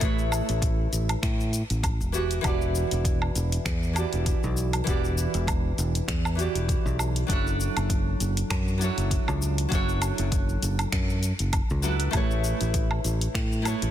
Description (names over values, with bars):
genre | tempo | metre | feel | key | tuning
sunset chillout | 99 BPM | 4/4 | swing 55% on 16ths | A major | A4 = 442 Hz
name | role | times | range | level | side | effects
nylon-string guitar | accompaniment | 0.0-13.9 s | E3 to D5 | -30 LUFS | right 1 dB | auto-pan, ping-pong delay
fingered electric bass | bass | 0.0-13.9 s | E1 to A2 | -27 LUFS | equal | none
deep house drum kit | drums | 0.0-13.9 s | finger snaps, hi-hat, shaker, woodblock | -32 LUFS | equal | studio reverb, soft clipping on snare
electronic kick drum | drums | 0.0-13.5 s | none | -28 LUFS | equal | studio reverb
room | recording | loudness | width
little or no reverb | dense, heavily limited modern master | -23 LUFS | side -11 dB against mid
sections
0.0-13.9 A section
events
none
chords
0.0 Amaj9; 2.1 Em9; 7.3 Dmaj9/F#; 12.1 Amaj9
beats
| 0.02 0.62 1.23 1.84 | 2.44 3.05 3.65 4.26 | 4.87 5.47 6.08 6.68 | 7.29 7.90 8.50 9.11 | 9.72 10.32 10.93 11.53 | 12.14 12.75 13.35